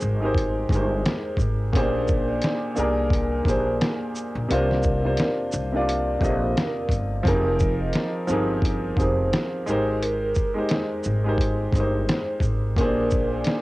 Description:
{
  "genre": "lo-fi hip hop",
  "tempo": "87 BPM",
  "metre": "4/4",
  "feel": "swing 56% on 16ths",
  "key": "unclear",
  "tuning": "A4 = 443 Hz",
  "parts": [
    { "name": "clear upright piano", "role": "accompaniment", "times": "0.0-13.6 s", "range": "Bb2 to Eb5", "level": "-24 LUFS", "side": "equal", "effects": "low-pass filter, cassette tape" },
    { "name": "upright bass", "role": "bass", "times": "0.0-13.4 s", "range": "F1 to C2", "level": "-26 LUFS", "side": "equal", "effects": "none" },
    { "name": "lo-fi sampler-style drum kit", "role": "drums", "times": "0.0-13.6 s", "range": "hi-hat, kick drum, shaker, snare drum", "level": "-24 LUFS", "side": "equal", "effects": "none" },
    { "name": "vibraphone with soft mallets", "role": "melody", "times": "0.7-13.6 s", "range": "Bb4 to Eb5", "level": "-30 LUFS", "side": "right 2 dB", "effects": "low-pass filter, cassette tape" }
  ],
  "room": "small room ambience",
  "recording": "home recording on cassette",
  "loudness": "-21 LUFS",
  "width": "side -19 dB against mid",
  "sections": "0.0-13.6 A section",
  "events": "none",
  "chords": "0.0 Abmaj9; 1.7 Bb13; 4.5 C7sus4; 7.3 Fm11; 9.7 Abmaj9; 12.8 Bb13"
}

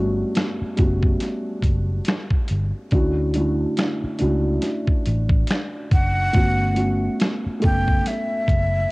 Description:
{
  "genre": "lo-fi hip hop",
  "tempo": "70 BPM",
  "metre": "4/4",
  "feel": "swing 57% on 16ths",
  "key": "unclear",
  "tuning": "A4 = 442 Hz",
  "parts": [
    { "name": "felt-muted upright piano", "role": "accompaniment", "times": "0.0-8.9 s", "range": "G2 to A4", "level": "-24 LUFS", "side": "equal", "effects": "cassette tape" },
    { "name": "vintage muted fingered electric bass", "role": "bass", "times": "0.0-8.8 s", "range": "F#1 to D2", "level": "-22 LUFS", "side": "equal", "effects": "none" },
    { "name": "dusty soul sampler-style drum kit", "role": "drums", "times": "0.3-8.7 s", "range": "finger snaps, hi-hat, kick drum, snare drum", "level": "-21 LUFS", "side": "equal", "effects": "cassette tape" },
    { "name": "breathy mellow jazz flute", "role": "melody", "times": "5.9-8.9 s", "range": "E5 to G5", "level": "-24 LUFS", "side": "equal", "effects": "cassette tape" }
  ],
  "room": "light reverb, studio reverb",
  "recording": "home recording on cassette",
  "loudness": "-19 LUFS",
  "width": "side -23 dB against mid",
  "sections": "0.0-8.9 A section",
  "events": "none",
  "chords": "0.0 Gmaj9#11; 2.9 Dmaj7; 6.3 Gmaj9#11"
}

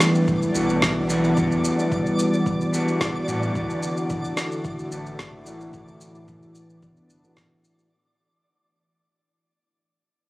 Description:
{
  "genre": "organic downtempo",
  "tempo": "110 BPM",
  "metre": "4/4",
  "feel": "straight",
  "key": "unclear",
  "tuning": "A4 = 442 Hz",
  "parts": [
    { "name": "electric guitar at the edge of break-up", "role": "accompaniment", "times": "0.0-7.9 s", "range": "E3 to F#4", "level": "-27 LUFS", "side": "equal", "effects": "sidechain pumping, low-pass filter, ping-pong delay, shimmer reverb" },
    { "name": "warm analog pad", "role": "sustained chords", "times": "0.0-7.9 s", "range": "A2 to F#4", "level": "-25 LUFS", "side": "equal", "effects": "chorus, sidechain pumping" },
    { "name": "electronic snare drum and shaker", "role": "drums", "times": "0.0-7.9 s", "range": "none", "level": "-26 LUFS", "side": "equal", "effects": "studio reverb" },
    { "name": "twinkling granular texture", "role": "texture", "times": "0.0-7.9 s", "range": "D5", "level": "-34 LUFS", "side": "equal", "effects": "built-in reverb, shimmer reverb" },
    { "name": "electronic kick drum", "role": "drums", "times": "0.3-7.5 s", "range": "none", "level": "-30 LUFS", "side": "equal", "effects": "studio reverb" },
    { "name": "warm sub bass", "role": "bass", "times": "0.6-7.3 s", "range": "E1 to A2", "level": "-31 LUFS", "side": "equal", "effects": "none" }
  ],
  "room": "moderate huge ambient reverb, RT60 6.8 s",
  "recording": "recorded on a phone in the room, club reverb",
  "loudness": "-20 LUFS",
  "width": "side -19 dB against mid",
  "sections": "0.0-7.9 A section",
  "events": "fade-out 0.0-7.9; filter sweep on clean electric guitar 0.0-7.9",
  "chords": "0.0 Em7; 3.6 D; 5.7 Asus4"
}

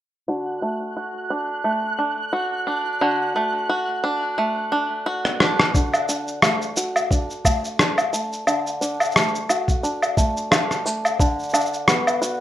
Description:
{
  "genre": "folktronica",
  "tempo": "88 BPM",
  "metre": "4/4",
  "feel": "swing 56% on 16ths",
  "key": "D major",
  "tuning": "A4 = 440 Hz",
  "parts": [
    { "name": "bluegrass banjo", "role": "arpeggios", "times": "0.3-12.4 s", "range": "D3 to F#4", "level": "-23 LUFS", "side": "right 1 dB", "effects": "low-pass filter, digital delay, plate reverb" },
    { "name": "flickering grainy texture", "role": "texture", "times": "0.6-5.7 s", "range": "F#6", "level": "-31 LUFS", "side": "right 2 dB", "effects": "built-in reverb" },
    { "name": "electronic rim click, shaker and woodblock", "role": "drums", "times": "5.3-12.4 s", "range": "none", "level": "-20 LUFS", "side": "left 1 dB", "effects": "none" },
    { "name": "electronic kick drum", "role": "drums", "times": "5.7-11.3 s", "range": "none", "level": "-20 LUFS", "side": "equal", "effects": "none" }
  ],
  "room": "light reverb",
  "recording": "rough home demo mix",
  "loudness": "-19 LUFS",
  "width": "side -12 dB against mid",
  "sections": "0.3-5.7 A section; 5.7-12.4 B section",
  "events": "filter sweep on five-string banjo 0.3-5.7, 5.7-12.4; drum fill 5.2-5.7",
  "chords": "0.3 D; 11.2 Bm"
}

